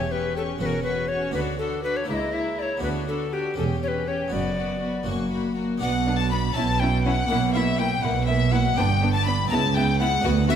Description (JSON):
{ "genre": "classical, baroque-style concerto movement with solo episodes", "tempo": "81 BPM (dotted quarters)", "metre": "6/8", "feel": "straight", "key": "B minor", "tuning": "A4 = 439 Hz", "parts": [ { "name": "alto recorder", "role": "melody", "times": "0.0-10.6 s", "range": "G4 to B5", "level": "-28 LUFS", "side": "left 2 dB", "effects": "none" }, { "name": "warm chamber violin section", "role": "melody", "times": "0.0-10.6 s", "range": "E5 to C#6", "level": "-32 LUFS", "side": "left 7 dB", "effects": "none" }, { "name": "warm chamber violin section", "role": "second line", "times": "0.0-10.6 s", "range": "D4 to G4", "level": "-33 LUFS", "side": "left 5 dB", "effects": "none" }, { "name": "harpsichord", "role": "accompaniment", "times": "0.0-10.6 s", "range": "C#2 to D5", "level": "-31 LUFS", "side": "left 1 dB", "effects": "none" }, { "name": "warm chamber viola section", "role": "accompaniment", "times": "0.0-10.6 s", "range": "A#3 to E4", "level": "-31 LUFS", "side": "equal", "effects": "none" }, { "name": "rich chamber double bass section", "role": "bass", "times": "0.0-10.6 s", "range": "E1 to D2", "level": "-26 LUFS", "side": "right 3 dB", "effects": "none" }, { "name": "warm chamber cello section", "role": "bass", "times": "0.0-10.6 s", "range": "C#2 to B2", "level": "-29 LUFS", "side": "right 5 dB", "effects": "none" } ], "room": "moderate concert hall reverb, RT60 2.2 s", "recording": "none", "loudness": "-21 LUFS", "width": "side -8 dB against mid", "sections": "0.0-5.8 A section; 5.8-10.6 B section", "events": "none", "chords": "0.0 C#dim/E; 0.6 F#5/E; 1.3 Bm/D; 2.1 A#dim/C#; 2.8 Bm/D; 3.6 C#dim/E; 4.3 Bm/F#; 5.1 F#; 5.8 Bm; 6.6 A13/B; 7.3 Em69/B; 8.8 G; 9.5 A13/C#", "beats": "0.60 | 1.34 2.08 | 2.82 3.56 | 4.31 5.06 | 5.81 6.56 | 7.30 8.04 | 8.77 9.51 | 10.25" }